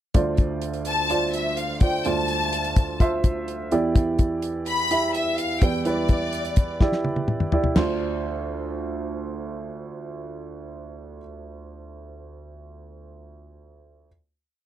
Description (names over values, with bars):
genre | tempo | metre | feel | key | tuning
piano-driven pop | 126 BPM | 4/4 | straight | D dorian | A4 = 440 Hz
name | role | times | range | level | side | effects
warm upright piano | accompaniment | 0.1-14.1 s | D2 to E5 | -26 LUFS | right 3 dB | none
damped 70s drum kit | drums | 0.1-7.9 s | crash cymbal, hi-hat, kick drum, snare drum, toms | -21 LUFS | left 1 dB | none
bright symphonic violin section | melody | 0.9-6.8 s | D5 to B5 | -25 LUFS | left 3 dB | slapback echo
room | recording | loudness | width
little or no reverb | dry, close 1970s-style studio recording | -21 LUFS | side -12 dB against mid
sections
0.1-7.8 verse; 7.8-11.6 final chord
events
drum fill 6.8-7.8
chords
0.1 Dm7; 3.7 Em7; 7.8 Dm7